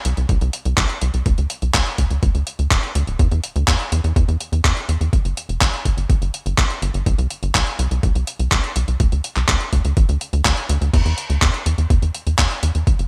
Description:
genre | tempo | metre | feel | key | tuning
italo disco | 124 BPM | 4/4 | straight | unclear | A4 = 440 Hz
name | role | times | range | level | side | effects
tight sequencer bass | bass | 0.1-13.1 s | D1 to E2 | -22 LUFS | equal | none
dusty soul sampler-style drum kit | drums | 0.1-13.1 s | crash cymbal, handclaps, hi-hat | -25 LUFS | equal | gated reverb
electronic kick drum | drums | 0.3-13.0 s | none | -20 LUFS | equal | none
room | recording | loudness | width
light reverb | bright 1980s-style digital production | -19 LUFS | mono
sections
0.0-13.1 A section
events
none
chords
none

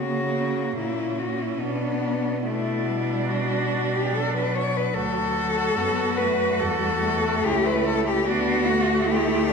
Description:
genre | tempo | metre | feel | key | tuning
classical, lyrical piece for cello ensemble | 72 BPM | 4/4 | rubato | B minor | A4 = 441 Hz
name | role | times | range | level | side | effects
warm cello | melody | 0.0-9.5 s | D4 to C#5 | -25 LUFS | left 4 dB | none
warm cello | second line | 0.0-9.5 s | A#3 to F#4 | -28 LUFS | right 6 dB | none
warm cello | accompaniment | 0.0-9.5 s | F#3 to B3 | -28 LUFS | left 2 dB | none
rich cello | bass | 0.0-9.5 s | C#2 to C#3 | -29 LUFS | right 2 dB | none
room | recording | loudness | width
wet scoring stage reverb, RT60 1.7 s | recorded in a church or concert hall | -21 LUFS | side -5 dB against mid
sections
0.0-9.5 A section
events
none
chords
0.0 F#/C#; 1.6 Bm; 5.0 D; 6.6 A/E; 8.3 D

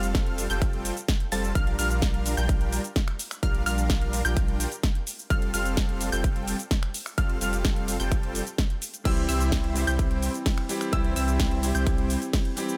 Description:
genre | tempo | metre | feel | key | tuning
EDM, festival progressive house | 128 BPM | 4/4 | straight | F major | A4 = 442 Hz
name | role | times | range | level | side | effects
unison pluck | arpeggios | 0.0-12.2 s | E6 to A6 | -36 LUFS | equal | sidechain pumping, digital delay
dense compressed supersaw | riff | 0.0-12.2 s | G3 to A5 | -35 LUFS | equal | sidechain pumping, digital delay
saturated sub bass | bass | 0.0-12.2 s | F1 to C2 | -31 LUFS | equal | sidechain pumping
big-room dance drum kit | drums | 0.0-12.8 s | crash cymbal, finger snaps, hi-hat, ride cymbal, shaker, snare drum | -34 LUFS | equal | none
electronic kick drum | drums | 0.1-12.4 s | none | -28 LUFS | equal | none
bright concert grand piano | accompaniment | 9.0-12.8 s | E3 to G4 | -33 LUFS | equal | sidechain pumping, digital delay
room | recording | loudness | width
little or no reverb | none | -26 LUFS | mono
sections
0.0-12.8 A section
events
none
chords
0.0 Fadd9; 1.6 Bb6; 5.3 Fadd9; 9.1 C

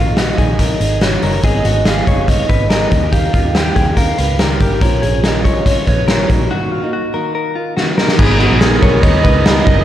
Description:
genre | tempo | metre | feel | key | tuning
jangly indie pop | 142 BPM | 4/4 | straight | G# dorian | A4 = 440 Hz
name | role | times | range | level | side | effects
warbly nostalgic lead | melody | 0.0-9.8 s | F#4 to G5 | -20 LUFS | right 2 dB | chorus, tremolo, slapback echo
fingerpicked plugged-in steel-string acoustic guitar | accompaniment | 0.0-9.8 s | G#2 to A#4 | -22 LUFS | right 3 dB | slapback echo
direct-recorded clean electric guitar | arpeggios | 0.0-9.8 s | E#4 to C#5 | -21 LUFS | left 6 dB | slapback echo
vintage muted fingered electric bass | bass | 0.0-9.8 s | F#1 to D#2 | -18 LUFS | equal | none
raw garage drum kit | drums | 0.2-9.8 s | crash cymbal, hi-hat, kick drum, ride cymbal, snare drum | -14 LUFS | equal | none
combo organ | accompaniment | 8.2-9.8 s | B3 to A#5 | -20 LUFS | right 5 dB | slapback echo
room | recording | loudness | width
moderate lush hall reverb, RT60 2.4 s | big arena sound | -11 LUFS | side -12 dB against mid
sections
0.0-8.2 A section; 8.2-9.8 B section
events
break 6.5-8.2; drum fill 7.8-8.2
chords
0.0 D#m/A#; 1.4 G#m; 2.9 D#; 4.8 A#m; 6.3 D#m/A#; 8.2 G#madd9

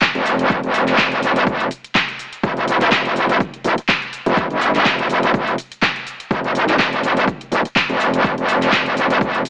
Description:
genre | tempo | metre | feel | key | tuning
bass house | 124 BPM | 4/4 | swing 56% on 16ths | unclear | A4 = 439 Hz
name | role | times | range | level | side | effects
electronic kick drum | drums | 0.0-9.3 s | none | -25 LUFS | equal | overdrive
house drum kit | drums | 0.0-9.5 s | handclaps, hi-hat, shaker | -22 LUFS | equal | none
metallic wobble bass | bass | 0.1-9.4 s | Eb1 to G1 | -18 LUFS | equal | distortion, chorus, tube saturation, sidechain pumping
room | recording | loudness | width
light reverb | AM radio sound | -17 LUFS | mono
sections
0.0-9.5 A section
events
none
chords
none

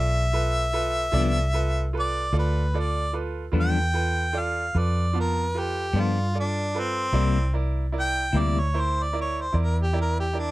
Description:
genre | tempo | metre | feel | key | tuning
slow blues | 50 BPM (dotted quarters) | 12/8 | straight | G mixolydian | A4 = 440 Hz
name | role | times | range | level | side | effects
warm harmonica | melody | 0.0-10.5 s | C4 to G5 | -27 LUFS | equal | none
bright baby grand piano | accompaniment | 0.0-10.5 s | B3 to A5 | -32 LUFS | right 5 dB | none
vintage muted fingered electric bass | bass | 0.0-10.5 s | B1 to G2 | -25 LUFS | equal | none
clean electric guitar | accompaniment | 1.1-8.6 s | G2 to E4 | -26 LUFS | left 6 dB | tremolo
room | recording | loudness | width
little or no reverb | dry, close 1970s-style studio recording | -22 LUFS | side -18 dB against mid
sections
0.0-10.5 A section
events
harmonica solo 0.0-10.5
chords
0.0 G7; 7.1 C7

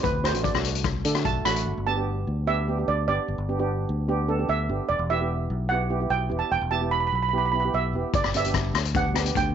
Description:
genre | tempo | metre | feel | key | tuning
calypso | 148 BPM | 4/4 | straight | G major | A4 = 439 Hz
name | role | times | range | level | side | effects
steel pan | melody | 0.0-9.5 s | B4 to B5 | -26 LUFS | right 6 dB | none
steel pan | accompaniment | 0.0-9.4 s | A3 to E5 | -30 LUFS | right 3 dB | none
fingered electric bass | bass | 0.0-9.5 s | E1 to D3 | -28 LUFS | left 1 dB | none
street-band drum kit | drums | 0.0-1.7, 8.1-9.5 s | hi-hat, kick drum, rim click | -26 LUFS | left 6 dB | none
room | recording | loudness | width
light reverb | 1960s-style stereo with parts hard left and right, nothing above 7.7 kHz | -23 LUFS | side -8 dB against mid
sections
0.0-1.7 A section; 1.7-9.5 B section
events
steel pan solo 0.0-1.7; steel pan fill 0.8-1.7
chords
0.0 Dadd9; 1.7 G; 4.9 Em; 8.1 G

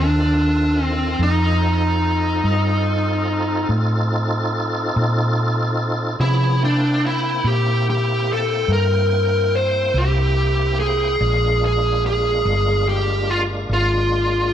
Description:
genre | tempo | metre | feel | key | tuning
slow blues | 48 BPM (dotted quarters) | 12/8 | straight | F mixolydian | A4 = 440 Hz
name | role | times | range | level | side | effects
smooth overdriven lead guitar | melody | 0.0-14.5 s | D4 to C5 | -19 LUFS | equal | none
tonewheel organ | sustained chords | 0.0-14.5 s | Eb3 to G5 | -26 LUFS | equal | slow rotary speaker, overdrive, chorus vibrato
hollow-body short-scale fingered electric bass | bass | 0.0-14.5 s | G1 to C3 | -20 LUFS | equal | none
room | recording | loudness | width
moderate recital hall reverb, RT60 1.5 s | none | -16 LUFS | side -10 dB against mid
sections
0.0-14.5 A section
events
none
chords
0.0 F7; 6.2 C7; 11.2 Bb7

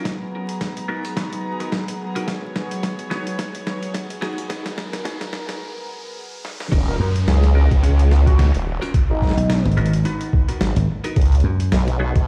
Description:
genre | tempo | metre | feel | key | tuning
glitch hop | 108 BPM | 4/4 | swing 57% on 16ths | G# dorian | A4 = 444 Hz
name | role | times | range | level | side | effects
dark studio string section | sustained chords | 0.0-6.7 s | F#3 to A#5 | -33 LUFS | equal | sidechain pumping, low-pass filter
semi-hollow electric guitar | stabs | 0.0-12.1 s | B3 to C#5 | -33 LUFS | equal | phaser, sidechain pumping, low-pass filter, digital delay
riser and downlifter | sound effects | 2.1-11.2 s | none | -42 LUFS | equal | none
boom bap sampler-style drum kit | drums | 0.1-12.3 s | crash cymbal, hi-hat, snare drum | -30 LUFS | equal | none
electronic kick drum | drums | 0.1-12.3 s | none | -21 LUFS | equal | high-pass filter on kick
formant-sweep wobble bass | bass | 6.7-12.3 s | D#1 to C#2 | -18 LUFS | equal | chorus
sync lead | melody | 6.9-9.7 s | D#4 to A#4 | -32 LUFS | equal | analog chorus, digital delay
dry thumbed slap bass | bass | 7.0-11.7 s | G#1 to F#2 | -20 LUFS | equal | none
room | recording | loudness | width
light reverb | played on a big sound system in a bare room, stone room reverb, vinyl crackle, high-pass filter | -20 LUFS | mono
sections
0.0-6.7 A section; 6.7-12.3 B section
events
build-up 0.0-6.7; drum fill 0.0-5.6, 6.4; filter sweep 0.0-6.7; break 5.6-6.7; drop 6.7-12.3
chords
0.1 G#m9; 2.3 C#7sus4; 4.5 G#m9; 6.7 D#m9; 8.9 G#m9; 11.2 C#7sus4

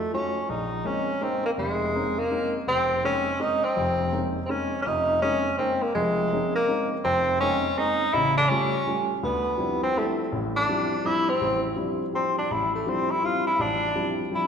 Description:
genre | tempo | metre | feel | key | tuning
jazz | 165 BPM | 3/4 | swing 65% on 8ths | Bb dorian, D dorian from 9.2 s | A4 = 440 Hz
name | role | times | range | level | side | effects
warm tenor saxophone | melody | 0.0-14.5 s | Ab3 to F4 | -24 LUFS | equal | none
warm baby grand piano | accompaniment | 0.1-14.5 s | F1 to F4 | -28 LUFS | left 1 dB | none
room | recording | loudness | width
wet concert hall reverb, RT60 1.8 s | recorded in a church or concert hall | -22 LUFS | side -7 dB against mid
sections
0.5-9.2 A section; 9.2-14.5 B section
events
tenor saxophone solo 9.2-14.5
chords
0.5 Bbm11; 8.1 A7b13; 9.2 Dm11

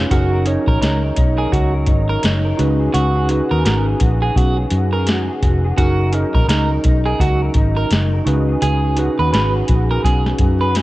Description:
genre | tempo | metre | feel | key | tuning
indie pop, bedroom pop | 84 BPM | 4/4 | swing 60% on 16ths | F# major | A4 = 440 Hz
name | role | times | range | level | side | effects
electric guitar through a small old amp | accompaniment | 0.0-10.8 s | C#3 to B4 | -23 LUFS | left 2 dB | analog chorus, warbly pitch drift
warm analog keys | accompaniment | 0.0-10.8 s | C#4 to C#5 | -23 LUFS | right 2 dB | chorus
vintage muted fingered electric bass | bass | 0.0-10.8 s | E#1 to F#2 | -18 LUFS | equal | transformer saturation
electric guitar at the edge of break-up | second line | 0.1-10.7 s | F#4 to B4 | -23 LUFS | right 3 dB | wide subtle chorus, slapback echo
soft vintage rhythm box | drums | 0.1-10.8 s | hi-hat, kick drum, snare drum | -18 LUFS | equal | none
room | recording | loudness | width
digital ambience | worn, warbling old tape, cassette tape, warbly pitch drift | -14 LUFS | side -17 dB against mid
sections
0.1-10.8 A section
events
none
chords
0.1 F#6; 2.6 C#9sus4; 5.8 F#6; 8.3 C#9sus4

